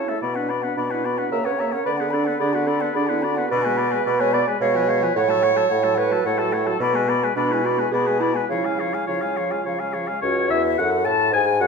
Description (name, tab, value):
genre	quick classical-period movement for wind quintet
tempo	109 BPM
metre	3/4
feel	straight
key	F# minor from 3.5 s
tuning	A4 = 438 Hz
part	hollow concert flute	melody	0.0-11.7 s	C#5 to B5	-25 LUFS	left 7 dB	none
part	warm oboe	second line	0.0-11.7 s	A4 to A5	-27 LUFS	left 4 dB	none
part	dark French horn	accompaniment	0.0-11.7 s	E#3 to A4	-29 LUFS	left 1 dB	none
part	dark clarinet	accompaniment	0.0-11.7 s	C#4 to D5	-24 LUFS	right 7 dB	none
part	clear bassoon	bass	0.0-11.7 s	C#2 to D3	-24 LUFS	right 1 dB	none
room	wet recital hall reverb, RT60 1.8 s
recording	minimal, uncompressed stereo recording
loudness	-19 LUFS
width	side -5 dB against mid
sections	0.0-10.2 A section; 10.2-11.7 B section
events	none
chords	0.2 Bm; 1.3 F#7/C#; 1.9 Bm/D; 3.5 G#dim/B; 4.6 C#7/B; 5.2 F#m/A; 6.8 G#dim/B; 8.5 C#; 10.2 F#m/C#